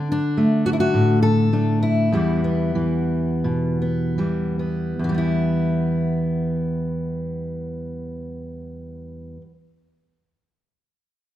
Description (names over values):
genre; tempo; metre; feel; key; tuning
folk, solo fingerstyle acoustic guitar; 74-110 BPM; 4/4; rubato; E minor; A4 = 440 Hz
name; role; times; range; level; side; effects
fingerpicked steel-string acoustic guitar; solo; 0.0-9.5 s; E2 to A4; -20 LUFS; equal; none
room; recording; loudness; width
wet large studio reverb, RT60 1.4 s; minimal, uncompressed stereo recording; -19 LUFS; side -12 dB against mid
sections
0.0-5.0 A section; 5.0-8.2 B section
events
slowing down 0.0-5.0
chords
0.0 D5; 2.1 Em